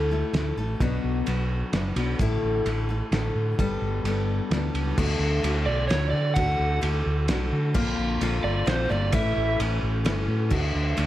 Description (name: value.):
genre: folk rock and heartland rock.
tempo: 130 BPM.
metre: 3/4.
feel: straight.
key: D major.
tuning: A4 = 440 Hz.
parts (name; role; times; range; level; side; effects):
picked steel-string acoustic guitar; accompaniment; 0.0-11.1 s; A2 to A4; -28 LUFS; left 3 dB; none.
fingered electric bass; bass; 0.0-11.1 s; F#1 to D3; -26 LUFS; right 1 dB; none.
cloth-damped thuddy drum kit; drums; 0.3-11.1 s; crash cymbal, kick drum, ride cymbal, snare drum; -29 LUFS; right 1 dB; none.
overdriven slide guitar; melody; 5.7-9.6 s; C5 to F#5; -28 LUFS; right 2 dB; slapback echo.
room: light reverb, studio reverb.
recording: dark, warm production.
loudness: -22 LUFS.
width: side -13 dB against mid.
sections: 0.0-5.0 A section; 5.0-11.1 B section.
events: none.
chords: 0.0 Dsus2; 0.8 Bm; 2.2 Dsus2/A; 3.6 Gadd9; 5.0 D; 7.8 Bbadd9; 9.1 A; 10.5 D.